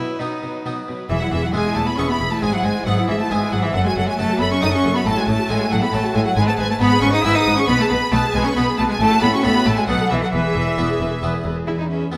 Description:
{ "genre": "classical, baroque-style concerto movement with solo episodes", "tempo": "136 BPM", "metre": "3/4", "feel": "straight", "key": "E major", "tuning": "A4 = 440 Hz", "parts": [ { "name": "clear studio violin section", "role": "melody", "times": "0.0-12.2 s", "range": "B4 to E6", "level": "-27 LUFS", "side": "equal", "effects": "none" }, { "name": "rich cello", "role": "melody", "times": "0.0-12.2 s", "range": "E3 to E4", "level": "-24 LUFS", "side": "equal", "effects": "none" }, { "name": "rich chamber violin section", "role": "second line", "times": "0.0-12.2 s", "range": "B4 to E6", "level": "-28 LUFS", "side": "equal", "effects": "none" }, { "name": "harpsichord", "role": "accompaniment", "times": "0.0-12.2 s", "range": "E2 to A4", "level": "-29 LUFS", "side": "equal", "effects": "none" }, { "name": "rich symphonic viola section", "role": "accompaniment", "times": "0.0-12.2 s", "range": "F#3 to B4", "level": "-29 LUFS", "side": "equal", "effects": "none" }, { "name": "rich studio cello section", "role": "bass", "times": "0.0-12.2 s", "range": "E2 to B2", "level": "-28 LUFS", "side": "equal", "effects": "none" }, { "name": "rich chamber double bass section", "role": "bass", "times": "1.1-11.5 s", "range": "E1 to B1", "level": "-28 LUFS", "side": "equal", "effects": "none" } ], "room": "moderate recital hall reverb, RT60 1.4 s", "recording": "none", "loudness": "-19 LUFS", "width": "mono", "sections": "0.0-1.1 A section; 1.1-11.7 B section", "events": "none", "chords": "0.0 B; 1.1 E; 2.4 E/G#; 3.7 F#m; 5.1 F#m/A; 6.4 G#m; 7.7 G#m/B; 9.0 F#m/A; 9.9 B7; 10.3 E" }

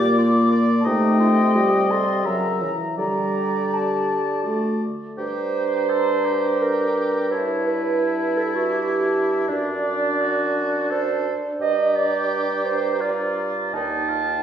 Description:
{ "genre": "classical, slow romantic movement for wind quintet", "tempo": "84 BPM", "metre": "3/4", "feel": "uneven beats, rubato", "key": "G minor", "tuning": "A4 = 438 Hz", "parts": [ { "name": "mellow silver concert flute", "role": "melody", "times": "0.0-14.4 s", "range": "G5 to D6", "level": "-29 LUFS", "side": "left 4 dB", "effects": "none" }, { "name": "warm oboe", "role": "second line", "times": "0.0-14.4 s", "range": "D4 to E5", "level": "-28 LUFS", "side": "left 2 dB", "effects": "none" }, { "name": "mellow French horn", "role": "accompaniment", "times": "0.0-14.4 s", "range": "E3 to E4", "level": "-24 LUFS", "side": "equal", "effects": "none" }, { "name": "mellow clarinet", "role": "accompaniment", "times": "0.0-14.4 s", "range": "Eb4 to A5", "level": "-23 LUFS", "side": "right 3 dB", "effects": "none" }, { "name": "dark bassoon", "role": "bass", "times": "0.0-14.4 s", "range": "Eb2 to D3", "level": "-26 LUFS", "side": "right 1 dB", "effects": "none" } ], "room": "wet recital hall reverb, RT60 1.5 s", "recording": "heard from further back in the room", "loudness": "-19 LUFS", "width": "side -9 dB against mid", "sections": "0.0-5.2 A section; 5.2-14.4 B section", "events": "none", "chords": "0.0 Gm/Bb; 0.9 Am7b5/C; 2.3 F#7/C#; 3.0 Dsus4; 4.4 D; 5.2 Gm; 7.3 A5/G; 9.5 D/F#; 11.6 Gm; 13.7 Eb" }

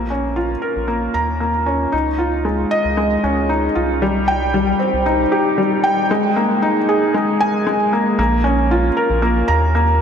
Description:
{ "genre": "piano and strings electronica", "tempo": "115 BPM", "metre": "4/4", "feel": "straight", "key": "Bb dorian", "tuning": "A4 = 440 Hz", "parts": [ { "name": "felt-muted upright piano", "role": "riff", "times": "0.0-10.0 s", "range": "G3 to Bb5", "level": "-16 LUFS", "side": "equal", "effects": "digital delay" }, { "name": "round analog bass", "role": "bass", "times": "0.0-10.0 s", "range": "Bb1 to Eb2", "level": "-21 LUFS", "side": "equal", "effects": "none" } ], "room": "wet huge ambient reverb, RT60 4.6 s", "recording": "none", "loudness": "-15 LUFS", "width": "side -7 dB against mid", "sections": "0.0-8.2 A section; 8.2-10.0 B section", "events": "build-up 0.0-8.2; drop 8.2-10.0", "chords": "0.0 Bbm; 1.9 Dbadd9; 4.0 Cm; 6.1 Ebsus4; 8.2 Bbm" }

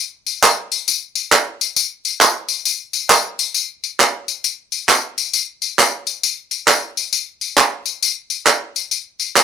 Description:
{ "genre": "gospel", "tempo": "134 BPM", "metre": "4/4", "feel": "swing 64% on 8ths", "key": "none", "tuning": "none", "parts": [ { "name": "tambourine and handclaps", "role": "percussion", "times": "0.3-9.4 s", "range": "none", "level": "-14 LUFS", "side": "equal", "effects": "none" } ], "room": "light reverb", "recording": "dry, close 1970s-style studio recording", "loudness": "-15 LUFS", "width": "side -7 dB against mid", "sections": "0.0-3.5 A section; 3.5-9.4 B section", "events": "none", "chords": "none" }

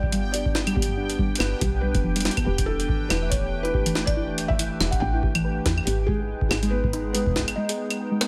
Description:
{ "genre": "IDM", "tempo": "141 BPM", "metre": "4/4", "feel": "swing 56% on 16ths", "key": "unclear", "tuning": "A4 = 441 Hz", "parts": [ { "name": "felt-muted upright piano", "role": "melody", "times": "0.0-8.3 s", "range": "G4 to G5", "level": "-33 LUFS", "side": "equal", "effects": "tape echo" }, { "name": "hollow soft pad", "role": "sustained chords", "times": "0.0-8.3 s", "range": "E3 to B4", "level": "-34 LUFS", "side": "equal", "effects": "chorus, vintage 12-bit sampler grit, sidechain pumping" }, { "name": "woody FM bass", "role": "bass", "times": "0.0-7.6 s", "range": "E1 to E2", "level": "-31 LUFS", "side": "equal", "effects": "none" }, { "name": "electronic kick drum", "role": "drums", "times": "0.0-7.5 s", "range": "none", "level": "-29 LUFS", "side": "equal", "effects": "studio reverb" }, { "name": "bubbling stepped-filter texture", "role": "texture", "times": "0.0-8.3 s", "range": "G5", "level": "-40 LUFS", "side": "equal", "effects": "chorus, built-in reverb" }, { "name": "soft round pluck", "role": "arpeggios", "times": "0.1-8.3 s", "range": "G2 to E5", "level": "-32 LUFS", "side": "equal", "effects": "chorus, digital delay" }, { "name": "jungle sampler-style drum kit", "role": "drums", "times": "0.1-8.3 s", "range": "claves, hi-hat, snare drum", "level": "-29 LUFS", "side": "equal", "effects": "studio reverb" } ], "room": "light reverb", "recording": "none", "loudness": "-24 LUFS", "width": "mono", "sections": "0.0-8.3 A section", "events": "none", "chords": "0.0 G; 2.5 Em7; 5.9 Abm" }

